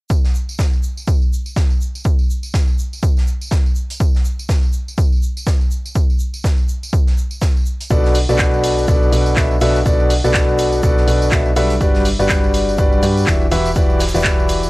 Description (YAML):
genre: piano house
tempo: 123 BPM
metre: 4/4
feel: swing 58% on 16ths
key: B minor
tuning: A4 = 441 Hz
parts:
  - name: big rock drum kit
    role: drums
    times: 0.1-14.6 s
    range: hi-hat, shaker, snare drum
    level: -32 LUFS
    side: right 1 dB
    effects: sidechain pumping on hats, high-pass filter on hats, high-pass filter on snare, sidechain pumping on perc, high-pass filter on perc, high-pass filter on room
  - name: electronic kick drum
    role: drums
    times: 0.1-14.4 s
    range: none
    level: -16 LUFS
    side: equal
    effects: none
  - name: tambourine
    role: percussion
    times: 0.1-14.7 s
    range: none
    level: -34 LUFS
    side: right 2 dB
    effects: none
  - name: clear concert grand piano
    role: riff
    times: 7.9-14.7 s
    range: B2 to E5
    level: -16 LUFS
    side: equal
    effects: sidechain pumping, tape echo
  - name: solid FM bass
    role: bass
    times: 7.9-14.7 s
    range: E1 to G2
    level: -20 LUFS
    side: equal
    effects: sidechain pumping
  - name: punchy analog drum machine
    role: drums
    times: 8.1-14.6 s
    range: handclaps, hi-hat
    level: -23 LUFS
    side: equal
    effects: none
room: small room ambience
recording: dry, gritty hardware recording, cassette tape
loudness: -14 LUFS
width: side -21 dB against mid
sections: 0.1-14.7 A section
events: none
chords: 0.1 N.C.; 7.9 Bm7; 11.8 Em9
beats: | 0.10 0.59 1.08 1.56 | 2.05 2.54 3.03 3.52 | 4.00 4.49 4.98 5.47 | 5.95 6.44 6.93 7.42 | 7.91 8.39 8.88 9.37 | 9.86 10.34 10.83 11.32 | 11.81 12.29 12.78 13.27 | 13.76 14.25